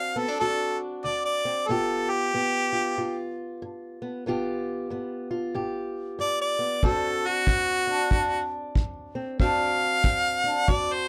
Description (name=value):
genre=acoustic country blues, solo or duo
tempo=93 BPM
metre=4/4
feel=swing 61% on 8ths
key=D mixolydian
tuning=A4 = 440 Hz
part: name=clear harmonica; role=melody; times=0.0-11.1 s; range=F#4 to F5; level=-27 LUFS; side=equal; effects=none
part: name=fingerpicked old ladder-braced acoustic guitar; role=accompaniment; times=0.0-11.1 s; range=D2 to G4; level=-32 LUFS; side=equal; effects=none
part: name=kick drum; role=drums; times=6.8-10.9 s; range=none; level=-27 LUFS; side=equal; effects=none
room=light reverb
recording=close, detailed microphones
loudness=-26 LUFS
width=mono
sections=0.0-11.1 A section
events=harmonica solo 0.0-11.1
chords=0.0 D7; 1.7 G7; 6.8 D7